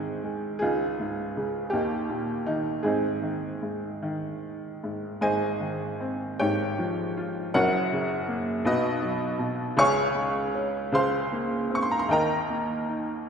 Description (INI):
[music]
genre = classical, lyrical solo piano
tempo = 48-54 BPM (dotted quarters)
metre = 6/8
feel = rubato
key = Ab major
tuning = A4 = 441 Hz
[part]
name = clear upright piano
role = solo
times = 0.0-13.3 s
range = Gb1 to Db6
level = -25 LUFS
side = equal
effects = none
[sound]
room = wet concert hall reverb, RT60 2.1 s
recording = recorded in a church or concert hall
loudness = -25 LUFS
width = side -6 dB against mid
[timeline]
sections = 0.0-5.2 A section; 5.2-13.3 A section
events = none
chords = 0.0 Ab; 0.6 Dbadd9; 1.7 Eb; 2.9 Ab; 6.4 Db/Ab; 7.5 Gb; 8.7 B; 9.8 Db; 10.9 Bbmadd9/Db; 12.1 Eb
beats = | 0.61 1.73 | 2.85 4.03 | 5.22 6.40 | 7.54 8.65 | 9.78 10.93 | 12.10